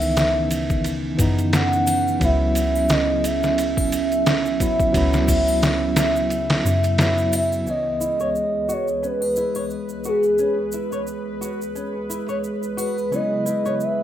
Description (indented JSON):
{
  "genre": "trip hop",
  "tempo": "88 BPM",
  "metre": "4/4",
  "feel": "swing 56% on 16ths",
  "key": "C# minor",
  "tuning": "A4 = 440 Hz",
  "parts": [
    { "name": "pure breathy sine lead", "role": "melody", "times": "0.0-14.0 s", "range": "G#4 to F#5", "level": "-22 LUFS", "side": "equal", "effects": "chorus, cassette tape, tape echo" },
    { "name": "bell-like tine electric piano", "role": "accompaniment", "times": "0.0-14.0 s", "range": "C#2 to D#5", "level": "-27 LUFS", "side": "equal", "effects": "harmonic tremolo, vintage 12-bit sampler grit, tape echo" },
    { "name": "warbly tape-like pad", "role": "sustained chords", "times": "0.0-14.0 s", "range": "C#3 to G#4", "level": "-27 LUFS", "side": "right 4 dB", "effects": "chorus, built-in reverb" },
    { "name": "soft 808-style bass", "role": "bass", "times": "0.0-7.6 s", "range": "C#2 to F#2", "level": "-24 LUFS", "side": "left 1 dB", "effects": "tube saturation" },
    { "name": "triangle and egg shaker", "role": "percussion", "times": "0.0-14.0 s", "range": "none", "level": "-34 LUFS", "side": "right 2 dB", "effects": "none" },
    { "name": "trip hop sampler-style drum kit", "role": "drums", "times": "0.2-7.5 s", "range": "hi-hat, kick drum, ride cymbal, snare drum", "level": "-24 LUFS", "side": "equal", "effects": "studio reverb" },
    { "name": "flamenco guitar", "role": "arpeggios", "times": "7.7-13.7 s", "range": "C#4 to C#5", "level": "-32 LUFS", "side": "left 3 dB", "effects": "vintage 12-bit sampler grit, low-pass filter, tape echo" },
    { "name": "bowed-like drone", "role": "texture", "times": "8.7-14.0 s", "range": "B4", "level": "-33 LUFS", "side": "right 1 dB", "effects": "built-in reverb" }
  ],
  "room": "little or no reverb",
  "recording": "rough home demo mix",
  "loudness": "-18 LUFS",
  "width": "side -11 dB against mid",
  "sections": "0.0-7.7 A section; 7.7-14.0 B section",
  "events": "kick drops out 6.3-7.7",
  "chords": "0.0 C#m7; 2.2 Bsus4/C#; 7.7 C#m7; 13.1 Bsus4/C#",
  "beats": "0.17 0.85 1.53 | 2.21 2.90 3.58 4.26 | 4.94 5.62 6.30 6.99 | 7.67 8.35 9.03 9.71 | 10.39 11.08 11.76 12.44 | 13.12 13.80"
}